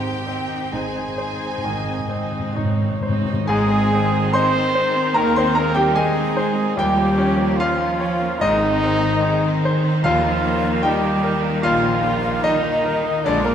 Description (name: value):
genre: classical, romantic movement for piano and orchestra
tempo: 74 BPM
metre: 4/4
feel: uneven beats, rubato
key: Ab major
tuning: A4 = 439 Hz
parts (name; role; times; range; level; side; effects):
- bright concert grand piano; melody; 0.0-13.5 s; Bb1 to C6; -22 LUFS; left 1 dB; none
- rich symphonic violin section; melody; 0.0-13.5 s; Eb4 to Ab5; -33 LUFS; left 2 dB; none
- clear symphonic violin section; second line; 0.0-13.5 s; G3 to Ab4; -30 LUFS; left 2 dB; none
- mellow cor anglais; second line; 0.0-13.5 s; Bb3 to Eb5; -29 LUFS; right 2 dB; none
- mellow hollow concert flute; second line; 0.0-13.5 s; Bb4 to C6; -29 LUFS; left 1 dB; none
- clear studio viola section; accompaniment; 0.0-13.5 s; Eb3 to Eb4; -28 LUFS; right 2 dB; none
- mellow French horn section; sustained chords; 0.0-13.5 s; Bb2 to C4; -27 LUFS; left 3 dB; none
- clear symphonic double bass section; bass; 0.0-13.5 s; Ab1 to Eb2; -28 LUFS; right 4 dB; none
- rich symphonic cello section; bass; 0.0-13.5 s; Ab2 to C4; -27 LUFS; right 3 dB; none
- timpani; percussion; 0.0-11.2 s; Ab2 to Eb3; -27 LUFS; equal; none
- warm trumpet; stabs; 3.5-13.5 s; Bb3 to C5; -26 LUFS; right 1 dB; none
room: wet scoring stage reverb, RT60 1.5 s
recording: minimal, uncompressed stereo recording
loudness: -17 LUFS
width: side -8 dB against mid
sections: 0.0-3.5 A section; 3.5-13.5 B section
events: timpani fill 0.0-3.5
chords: 0.0 Ab; 6.8 Eb9; 8.4 Ab; 10.0 Eb